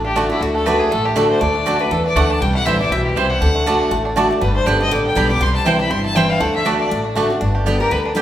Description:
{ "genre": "bluegrass", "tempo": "240 BPM", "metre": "4/4", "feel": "swing 56% on 8ths", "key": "D mixolydian", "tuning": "A4 = 441 Hz", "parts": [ { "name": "bluegrass banjo", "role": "melody", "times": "0.0-8.2 s", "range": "D3 to G4", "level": "-25 LUFS", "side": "right 1 dB", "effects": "none" }, { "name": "picked steel-string acoustic guitar", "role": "accompaniment", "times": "0.0-8.2 s", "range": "G2 to G4", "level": "-19 LUFS", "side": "equal", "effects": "none" }, { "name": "upright bass", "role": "bass", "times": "0.0-8.2 s", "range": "G1 to E2", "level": "-22 LUFS", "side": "equal", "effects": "none" }, { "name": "clear fiddle", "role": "melody", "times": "0.1-8.2 s", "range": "D4 to D6", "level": "-21 LUFS", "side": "left 2 dB", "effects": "none" }, { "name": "mandolin", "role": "stabs", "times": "0.2-8.2 s", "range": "A3 to A5", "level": "-22 LUFS", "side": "right 4 dB", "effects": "none" } ], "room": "wet recital hall reverb, RT60 1.8 s", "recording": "recorded in a church or concert hall", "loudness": "-14 LUFS", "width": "side -11 dB against mid", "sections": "0.0-7.4 A section", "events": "none", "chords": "0.0 D; 2.4 C; 3.4 D; 4.4 G; 5.4 C; 6.4 D; 7.4 G", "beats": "0.16 | 0.41 0.66 0.91 1.16 | 1.41 1.66 1.91 2.16 | 2.41 2.66 2.91 3.16 | 3.41 3.66 3.91 4.16 | 4.41 4.66 4.91 5.16 | 5.41 5.66 5.91 6.16 | 6.41 6.66 6.91 7.16 | 7.41 7.66 7.91 8.15" }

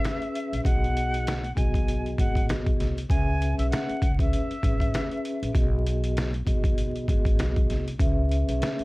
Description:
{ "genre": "hip hop, boom-bap hip-hop", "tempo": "98 BPM", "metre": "4/4", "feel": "swing 58% on 16ths", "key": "unclear", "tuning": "A4 = 441 Hz", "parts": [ { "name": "jazz flute", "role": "melody", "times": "0.0-5.5 s", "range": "E5 to G#5", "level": "-33 LUFS", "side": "left 1 dB", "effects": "slapback echo" }, { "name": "vibraphone with soft mallets", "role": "accompaniment", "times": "0.0-8.8 s", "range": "B3 to E5", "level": "-30 LUFS", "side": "left 1 dB", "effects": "none" }, { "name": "trip hop sampler-style drum kit", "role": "drums", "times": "0.0-8.8 s", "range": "hi-hat, kick drum, snare drum", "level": "-25 LUFS", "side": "equal", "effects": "none" }, { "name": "upright bass", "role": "bass", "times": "0.5-8.8 s", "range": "G#1 to C#2", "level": "-28 LUFS", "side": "equal", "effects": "none" } ], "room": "little or no reverb", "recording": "vinyl crackle", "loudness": "-23 LUFS", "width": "side -21 dB against mid", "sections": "0.0-8.8 A section", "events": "none", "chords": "0.0 C#m7; 0.6 B6; 3.1 C#m7; 5.5 B6; 8.0 C#m7", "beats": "0.04 | 0.65 1.26 1.87 2.49 | 3.10 3.71 4.32 4.93 | 5.55 6.16 6.77 7.38 | 8.00 8.61" }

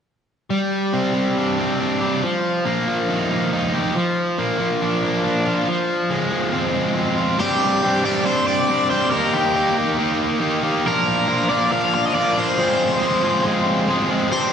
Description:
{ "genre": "rock", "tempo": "139 BPM", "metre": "4/4", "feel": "straight", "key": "C minor", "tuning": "A4 = 439 Hz", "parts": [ { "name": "distorted electric guitar", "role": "riff", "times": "0.5-14.5 s", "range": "F3 to Ab4", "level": "-18 LUFS", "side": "equal", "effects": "distortion" }, { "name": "cranked stack guitar", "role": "melody", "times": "7.4-14.5 s", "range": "G4 to F5", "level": "-21 LUFS", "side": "left 1 dB", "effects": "overdrive, phaser, diffuse ambient delay" } ], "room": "wet lush hall reverb, RT60 2.7 s", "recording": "dreamy mix soaked in reverb", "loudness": "-17 LUFS", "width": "side -7 dB against mid", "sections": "0.5-7.4 A section; 7.4-14.5 B section", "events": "none", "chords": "0.5 Csus2; 2.2 Ebsus2; 4.0 Bb; 5.7 Fm; 7.4 Csus2; 9.1 Eb; 10.9 Bb; 12.6 Fm", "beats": "| 0.50 0.93 1.36 1.79 | 2.23 2.66 3.09 3.52 | 3.95 4.38 4.81 5.24 | 5.68 6.11 6.54 6.97 | 7.40 7.83 8.27 8.70 | 9.13 9.56 9.99 10.43 | 10.86 11.29 11.72 12.16 | 12.59 13.02 13.46 13.89 | 14.32" }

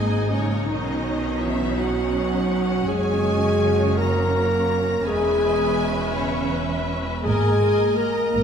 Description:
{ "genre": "cinematic", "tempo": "55 BPM (dotted quarters)", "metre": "6/8", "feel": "rubato", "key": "unclear", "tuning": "A4 = 439 Hz", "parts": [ { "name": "warm symphonic violin section", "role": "melody", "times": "0.0-8.4 s", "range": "C#5 to E5", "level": "-34 LUFS", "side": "left 2 dB", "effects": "none" }, { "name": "clear studio violin section", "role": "second line", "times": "0.0-8.4 s", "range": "C#5 to A#5", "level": "-31 LUFS", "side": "left 2 dB", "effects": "none" }, { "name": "dark clarinet", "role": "second line", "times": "0.0-8.4 s", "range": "C#4 to A#4", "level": "-24 LUFS", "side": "equal", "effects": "none" }, { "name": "warm symphonic viola section", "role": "accompaniment", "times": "0.0-8.4 s", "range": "A#3 to B4", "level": "-28 LUFS", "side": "equal", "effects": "none" }, { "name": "mellow French horn section", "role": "sustained chords", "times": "0.0-8.4 s", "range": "C#3 to A#3", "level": "-27 LUFS", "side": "left 1 dB", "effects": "none" }, { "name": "warm studio cello section", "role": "bass", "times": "0.0-8.4 s", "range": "E2 to B2", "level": "-28 LUFS", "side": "right 2 dB", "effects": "none" }, { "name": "warm studio double bass section", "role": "bass", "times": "0.0-8.4 s", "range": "E1 to B1", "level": "-27 LUFS", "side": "right 2 dB", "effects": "none" } ], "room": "wet recital hall reverb, RT60 1.6 s", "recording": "minimal, uncompressed stereo recording", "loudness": "-19 LUFS", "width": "side -7 dB against mid", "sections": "0.0-8.4 A section", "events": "none", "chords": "0.0 G#sus2; 0.7 Badd9; 2.9 F#sus2; 5.1 C#m7/E; 7.3 G#sus2", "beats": "| 0.68 1.78 | 2.88 3.98 | 5.07 6.16 | 7.25 8.34" }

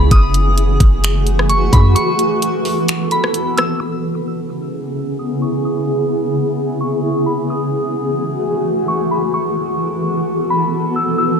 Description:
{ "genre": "hip hop, atmospheric cloud-rap", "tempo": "130 BPM", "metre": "4/4", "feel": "half-time", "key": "C# minor", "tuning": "A4 = 440 Hz", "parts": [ { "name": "soft synth bell", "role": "melody", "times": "0.0-11.4 s", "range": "B5 to E6", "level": "-22 LUFS", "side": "left 1 dB", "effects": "chorus, low-pass filter, ping-pong delay" }, { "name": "granular cloud pad", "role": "sustained chords", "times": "0.0-11.4 s", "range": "C#3 to A4", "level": "-17 LUFS", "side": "equal", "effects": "built-in reverb, sidechain pumping, low-pass filter" }, { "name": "warm 808-style bass", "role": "bass", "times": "0.0-1.9 s", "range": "F#1 to F#2", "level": "-14 LUFS", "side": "equal", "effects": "none" }, { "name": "smooth R&B drum kit", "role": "drums", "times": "0.1-3.7 s", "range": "finger snaps, hi-hat, kick drum, rim click", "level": "-15 LUFS", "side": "equal", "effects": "none" } ], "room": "moderate digital room reverb, RT60 1.1 s, digital ambience", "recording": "none", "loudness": "-14 LUFS", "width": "side -7 dB against mid", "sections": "0.0-3.8 A section; 3.8-11.4 B section", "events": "break 2.0-3.8", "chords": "0.1 F#m9; 2.0 B7sus4; 3.8 C#m7; 7.5 F#m9; 9.3 B7sus4", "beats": "| 0.11 0.57 1.04 1.50 | 1.96 2.42 2.88 3.34 | 3.81 4.27 4.73 5.19 | 5.65 6.11 6.57 7.04 | 7.50 7.96 8.42 8.88 | 9.34 9.80 10.27 10.73 | 11.19" }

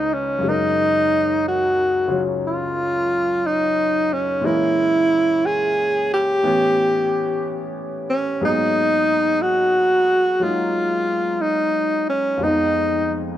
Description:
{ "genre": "jazz", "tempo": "60 BPM", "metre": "4/4", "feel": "swing 66% on 8ths", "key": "unclear", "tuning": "A4 = 440 Hz", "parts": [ { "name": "breathy alto saxophone", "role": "melody", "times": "0.0-13.2 s", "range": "Db4 to Ab4", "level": "-18 LUFS", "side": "equal", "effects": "none" }, { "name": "clear concert grand piano", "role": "accompaniment", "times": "0.0-13.4 s", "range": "Db2 to Cb5", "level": "-25 LUFS", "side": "left 1 dB", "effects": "none" } ], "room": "moderate plate reverb, RT60 3.4 s", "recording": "none", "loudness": "-17 LUFS", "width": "side -12 dB against mid", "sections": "0.0-13.4 A section", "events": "none", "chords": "0.4 Gb6; 4.4 Bbm7b5; 6.4 A9; 8.4 Abm9; 12.4 Fm7b5", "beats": "| 0.44 1.44 2.44 3.44 | 4.43 5.43 6.43 7.42 | 8.42 9.42 10.41 11.41 | 12.40" }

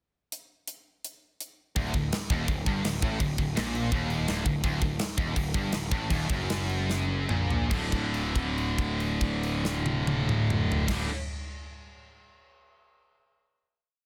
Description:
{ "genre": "heavy metal", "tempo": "139-168 BPM", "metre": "4/4", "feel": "straight", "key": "unclear", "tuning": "A4 = 439 Hz", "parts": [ { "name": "tight metal drum kit", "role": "drums", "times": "0.3-11.0 s", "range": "crash cymbal, hi-hat, kick drum, snare drum, toms", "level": "-33 LUFS", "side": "equal", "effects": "none" }, { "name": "biting overdriven guitar", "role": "riff", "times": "1.8-11.1 s", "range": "D2 to D3", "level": "-38 LUFS", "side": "equal", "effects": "none" }, { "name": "distorted electric guitar", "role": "riff", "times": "1.8-11.1 s", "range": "D2 to D3", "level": "-37 LUFS", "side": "equal", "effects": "distortion" }, { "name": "heavy high-gain guitar", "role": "riff", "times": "1.8-11.1 s", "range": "D2 to D3", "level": "-37 LUFS", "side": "equal", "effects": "distortion" }, { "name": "fuzz picked electric bass", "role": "bass", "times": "1.8-11.1 s", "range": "D1 to Bb1", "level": "-35 LUFS", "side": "equal", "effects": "overdrive" } ], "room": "little or no reverb", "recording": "dense, heavily limited modern master", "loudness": "-29 LUFS", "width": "mono", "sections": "0.3-1.8 pickup bar; 1.8-7.7 riff; 7.7-11.1 final chord", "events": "slowing down 4.6-7.7; drum fill 6.9-7.7; held note 7.7-10.9", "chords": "0.3 N.C.; 1.8 D; 7.7 D5", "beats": "| 0.33 0.69 1.05 1.41 | 1.77 2.13 2.49 2.85 | 3.21 3.57 3.92 4.28 | 4.64 5.00 5.36 5.73 | 6.11 6.49 6.88 7.29 | 7.71 8.14 8.56 8.99 | 9.42 9.85 10.29 10.71" }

